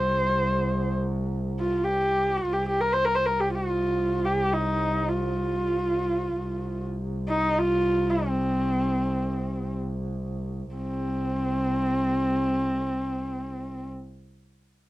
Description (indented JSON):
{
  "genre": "mongolian traditional, Mongolian folk",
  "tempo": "free time",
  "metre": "none",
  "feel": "none",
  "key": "C yu mode",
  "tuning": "A4 = 443 Hz",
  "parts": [
    { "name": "rich horsehead fiddle", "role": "melody", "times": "0.0-13.9 s", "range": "C4 to C5", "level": "-25 LUFS", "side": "equal", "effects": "none" },
    { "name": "rich double bass", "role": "drone", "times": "0.0-13.9 s", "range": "C2", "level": "-29 LUFS", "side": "equal", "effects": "stereo widening, cassette tape" }
  ],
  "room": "moderate booth ambience, RT60 0.2 s",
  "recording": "home recording on cassette",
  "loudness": "-24 LUFS",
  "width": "side -16 dB against mid",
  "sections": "0.0-10.7 A section; 10.7-14.9 B section",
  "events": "slowing down 6.4-10.7",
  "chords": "none"
}